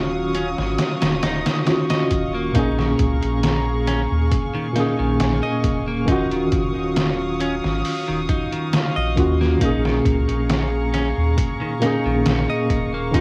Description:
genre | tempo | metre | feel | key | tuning
trip hop | 68 BPM | 4/4 | straight | unclear | A4 = 442 Hz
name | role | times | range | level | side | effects
tine electric piano | accompaniment | 0.0-13.2 s | Bb2 to Ab4 | -24 LUFS | equal | tremolo, cassette tape, tape echo
warm studio string section | sustained chords | 0.0-13.2 s | Gb3 to Eb6 | -31 LUFS | equal | vintage 12-bit sampler grit, cassette tape
round analog bass | bass | 0.0-13.2 s | Eb1 to Eb2 | -27 LUFS | equal | tube saturation
clean electric guitar | arpeggios | 0.3-13.2 s | Eb3 to Eb5 | -31 LUFS | equal | cassette tape, tape echo
trip hop sampler-style drum kit | drums | 0.3-13.2 s | hi-hat, kick drum, snare drum | -25 LUFS | equal | overdrive, cassette tape
room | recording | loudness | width
light reverb, digital ambience | home recording on cassette, vinyl crackle | -20 LUFS | mono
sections
0.0-13.2 A section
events
none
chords
0.0 Ebm9; 2.6 Bbm7; 6.1 Ebm9; 9.6 Bbm7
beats
0.79 1.67 | 2.56 3.44 4.32 5.20 | 6.08 6.97 7.85 8.73 | 9.61 10.50 11.38 12.26 | 13.14

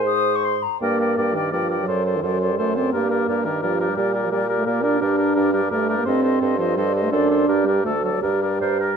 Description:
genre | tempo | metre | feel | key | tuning
quick classical-period movement for wind quintet | 170 BPM | 3/4 | rubato | G minor | A4 = 441 Hz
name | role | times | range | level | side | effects
mellow oboe | second line | 0.0-9.0 s | A4 to D5 | -27 LUFS | left 5 dB | none
mellow French horn | accompaniment | 0.0-9.0 s | Eb3 to Ab4 | -22 LUFS | right 1 dB | none
warm clarinet | accompaniment | 0.0-9.0 s | F#4 to C5 | -27 LUFS | right 10 dB | none
mellow bassoon | bass | 0.0-8.9 s | D2 to Bb2 | -24 LUFS | right 3 dB | none
silver concert flute | melody | 0.1-9.0 s | D5 to Eb6 | -29 LUFS | left 9 dB | none
room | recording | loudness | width
moderate recital hall reverb, RT60 1.5 s | none | -18 LUFS | side -6 dB against mid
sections
0.8-9.0 A section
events
none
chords
0.0 Ab; 0.8 Gm; 1.9 D7/F#; 2.9 Gm; 4.0 Gm/Bb; 5.0 Gm; 6.1 Am7b5/G; 7.1 D7/F#; 7.5 Gm; 7.8 D; 8.2 Gm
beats
0.05 0.43 | 0.81 1.18 1.53 | 1.88 2.23 2.58 | 2.93 3.28 3.62 | 3.97 4.31 4.66 | 5.01 5.36 5.71 | 6.06 6.41 6.76 | 7.12 7.48 7.84 | 8.22 8.61

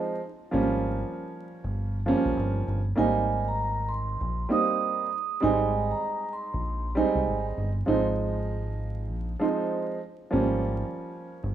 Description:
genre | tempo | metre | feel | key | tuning
hip hop, boom-bap hip-hop | 98 BPM | 4/4 | swing 61% on 16ths | Ab major | A4 = 440 Hz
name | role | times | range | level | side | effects
dark baby grand piano | accompaniment | 0.0-11.5 s | F3 to Eb4 | -27 LUFS | right 2 dB | cassette tape, high-pass filter, low-pass filter
deep dub fingered electric bass | bass | 0.5-11.5 s | G1 to C2 | -29 LUFS | equal | none
vibraphone with soft mallets | melody | 3.0-7.4 s | Ab5 to Eb6 | -29 LUFS | right 5 dB | high-pass filter, low-pass filter, tape echo
room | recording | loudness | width
light reverb, studio ambience | rough home demo mix, vinyl crackle | -25 LUFS | side -10 dB against mid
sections
0.0-11.5 A section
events
none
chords
0.0 Ab6; 0.5 Gm7b5; 3.0 Abmaj7; 5.4 Abmaj9; 7.9 Ab6; 10.3 Gm7b5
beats
| 0.53 1.14 1.75 2.37 | 2.98 3.59 4.20 4.81 | 5.43 6.04 6.65 7.26 | 7.88 8.49 9.10 9.71 | 10.32 10.94

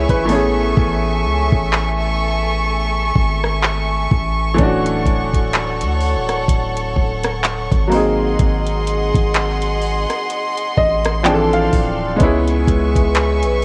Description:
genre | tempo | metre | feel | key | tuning
contemporary R&B | 63 BPM | 4/4 | swing 58% on 16ths | A major | A4 = 440 Hz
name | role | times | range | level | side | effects
bright baby grand piano | accompaniment | 0.0-13.6 s | E3 to G5 | -22 LUFS | equal | none
warm studio string section | sustained chords | 0.0-13.6 s | A3 to C#6 | -24 LUFS | equal | none
long sustained 808-style bass | bass | 0.0-13.6 s | D1 to D2 | -23 LUFS | equal | none
smooth R&B drum kit | drums | 0.1-13.6 s | handclaps, hi-hat, kick drum, rim click | -21 LUFS | equal | cassette tape
room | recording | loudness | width
little or no reverb | home recording on cassette | -17 LUFS | mono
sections
0.0-13.6 A section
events
hi-hats muted 0.8-4.6; grand piano fill 10.3-12.2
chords
0.3 Amaj7; 4.6 Dmaj7; 7.9 G#7; 11.2 Dm7; 12.2 C#m7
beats
| 0.77 1.73 2.68 3.63 | 4.58 5.54 6.49 7.44 | 8.39 9.35 10.30 11.25 | 12.20 13.15

